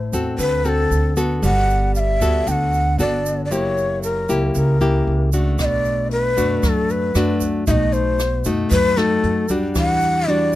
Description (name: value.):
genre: bossa nova.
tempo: 115 BPM.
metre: 4/4.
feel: straight.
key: unclear.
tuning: A4 = 439 Hz.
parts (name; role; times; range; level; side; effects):
breathy mellow shakuhachi; melody; 0.0-10.6 s; A4 to G5; -20 LUFS; left 1 dB; none.
nylon-string guitar; accompaniment; 0.0-10.6 s; A2 to A4; -21 LUFS; left 2 dB; none.
upright bass; bass; 0.0-10.5 s; F#1 to F#2; -22 LUFS; right 1 dB; none.
egg shaker; percussion; 0.1-10.6 s; none; -33 LUFS; right 9 dB; none.
jazz brush drum kit; drums; 5.6-10.4 s; hi-hat, kick drum, rim click; -25 LUFS; equal; none.
room: little or no reverb.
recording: close, detailed microphones.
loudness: -16 LUFS.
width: side -15 dB against mid.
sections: 0.0-10.6 A section.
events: none.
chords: 0.4 D7; 1.4 Gmaj9; 3.5 F#7b9; 5.6 Bm7; 7.7 B7; 9.8 Em9.